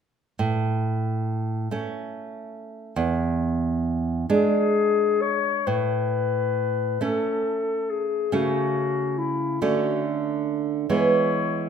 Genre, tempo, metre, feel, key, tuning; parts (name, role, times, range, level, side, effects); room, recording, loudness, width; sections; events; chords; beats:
romantic duo for clarinet and classical guitar; 46 BPM (dotted quarters); 6/8; uneven beats, rubato; A major; A4 = 445 Hz
nylon-string guitar; accompaniment; 0.4-11.7 s; E2 to D4; -24 LUFS; right 4 dB
warm clarinet; melody; 4.3-11.7 s; E4 to C#5; -24 LUFS; left 7 dB
moderate recital hall reverb, RT60 1.3 s; minimal, uncompressed stereo recording; -22 LUFS; side -7 dB against mid
0.4-5.7 A section; 5.7-11.7 B section
0.4 A; 3.0 E7; 5.7 A; 8.3 A/C#; 9.6 D5; 10.9 E
| 0.40 1.72 | 2.98 4.29 | 5.68 7.02 | 8.33 9.62 | 10.90